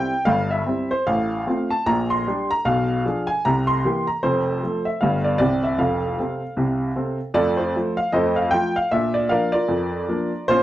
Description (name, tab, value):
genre	jazz, stride piano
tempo	153 BPM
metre	4/4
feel	swing 61% on 8ths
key	F major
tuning	A4 = 441 Hz
part	clear upright piano	solo	0.0-10.6 s	F1 to C6	-19 LUFS	equal	none
room	light reverb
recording	close, detailed microphones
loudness	-19 LUFS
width	side -14 dB against mid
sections	0.0-7.3 A section; 7.3-10.6 B section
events	none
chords	0.0 C; 1.1 F/A; 1.9 Gm/Bb; 2.6 Bdim7; 3.4 C7; 4.2 F; 5.0 G7; 5.4 C; 5.8 F; 8.9 Bb